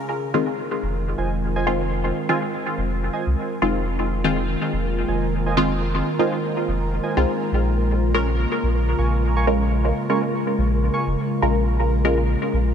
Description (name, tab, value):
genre	dub techno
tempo	123 BPM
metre	4/4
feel	swing 56% on 16ths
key	F minor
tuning	A4 = 440 Hz
part	warbly tape-like pad	sustained chords	0.0-12.7 s	Db3 to F4	-26 LUFS	left 1 dB	chorus, built-in reverb
part	bubbling stepped-filter texture	texture	0.7-12.7 s	Bb4	-33 LUFS	right 5 dB	chorus, built-in reverb
part	filtered dub chord stab	stabs	0.3-12.2 s	Eb3 to Bb4	-24 LUFS	equal	chorus, phaser, vintage 12-bit sampler grit, dub echo
part	soft dub sub bass	bass	0.8-12.7 s	F1 to C2	-22 LUFS	equal	none
part	warbly lo-fi synth keys	riff	1.2-11.0 s	F4 to Db6	-30 LUFS	right 4 dB	chorus, dub echo
room	moderate huge ambient reverb, RT60 4.3 s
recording	none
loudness	-19 LUFS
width	side -8 dB against mid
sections	0.0-12.7 A section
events	none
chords	0.0 Fm7; 7.8 Bbm7